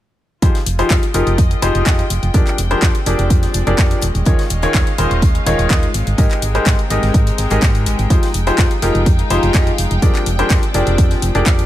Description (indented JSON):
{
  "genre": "piano house",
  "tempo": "125 BPM",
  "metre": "4/4",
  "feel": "straight",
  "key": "F minor",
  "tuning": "A4 = 439 Hz",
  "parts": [
    { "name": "clear concert grand piano", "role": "riff", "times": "0.4-11.7 s", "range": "Eb3 to Eb5", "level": "-19 LUFS", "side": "left 2 dB", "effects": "sidechain pumping, digital delay" },
    { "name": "solid FM bass", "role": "bass", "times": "0.4-11.6 s", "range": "Eb1 to Ab2", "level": "-18 LUFS", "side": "equal", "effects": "sidechain pumping" },
    { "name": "electronic kick drum", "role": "drums", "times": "0.4-11.6 s", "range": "none", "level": "-14 LUFS", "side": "equal", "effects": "overdrive" },
    { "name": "house drum kit", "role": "drums", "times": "0.4-11.7 s", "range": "handclaps, hi-hat", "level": "-23 LUFS", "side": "left 1 dB", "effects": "overdrive" },
    { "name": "modern studio drum kit", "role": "drums", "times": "0.4-11.7 s", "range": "hi-hat, snare drum", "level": "-33 LUFS", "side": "left 4 dB", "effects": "none" },
    { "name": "warm studio string section", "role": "texture", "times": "0.4-11.7 s", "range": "Ab3 to G5", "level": "-25 LUFS", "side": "left 1 dB", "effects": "sidechain pumping" }
  ],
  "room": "little or no reverb",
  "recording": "none",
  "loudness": "-12 LUFS",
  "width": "side -13 dB against mid",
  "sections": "0.4-11.7 A section",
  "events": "none",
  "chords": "0.4 Fm9; 2.3 Bb13/F; 4.0 Eb9sus4; 5.9 Abmaj9; 8.1 Fm9; 10.0 Bb13/F"
}